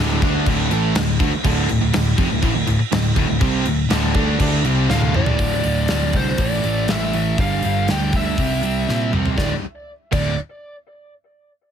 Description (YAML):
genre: hard rock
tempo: 121 BPM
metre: 4/4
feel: straight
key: unclear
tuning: A4 = 440 Hz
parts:
  - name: biting overdriven guitar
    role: riff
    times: 0.0-5.4 s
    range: D2 to D4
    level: -25 LUFS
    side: equal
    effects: none
  - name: crunchy overdriven guitar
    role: riff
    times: 0.0-10.3 s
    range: D2 to D4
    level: -23 LUFS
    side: right 10 dB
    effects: none
  - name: scooped high-gain guitar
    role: riff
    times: 0.0-10.3 s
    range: D2 to D4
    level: -25 LUFS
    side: left 10 dB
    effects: distortion
  - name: fingered electric bass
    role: bass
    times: 0.0-10.4 s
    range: D1 to Bb2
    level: -22 LUFS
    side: left 1 dB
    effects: none
  - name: gated 80s drum kit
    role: drums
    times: 0.2-10.2 s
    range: crash cymbal, hi-hat, kick drum, snare drum, toms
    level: -22 LUFS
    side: left 1 dB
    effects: none
  - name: bluesy overdriven lead guitar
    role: melody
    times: 4.9-10.4 s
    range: C5 to G5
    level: -25 LUFS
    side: left 1 dB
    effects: distortion, analog delay
room: little or no reverb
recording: heavily compressed radio sound, multiband compression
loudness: -16 LUFS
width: side -8 dB against mid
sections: 0.0-5.4 A section; 5.4-9.4 B section; 9.4-11.4 C section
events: drum fill 4.9-5.4, 8.9-9.4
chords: 0.0 D5; 6.4 A5; 7.4 G5; 8.4 C; 9.4 D5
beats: 0.47 0.95 | 1.45 1.94 2.43 2.92 | 3.41 3.91 4.40 4.90 | 5.39 5.89 6.39 6.88 | 7.38 7.88 8.38 8.88 | 9.38 9.88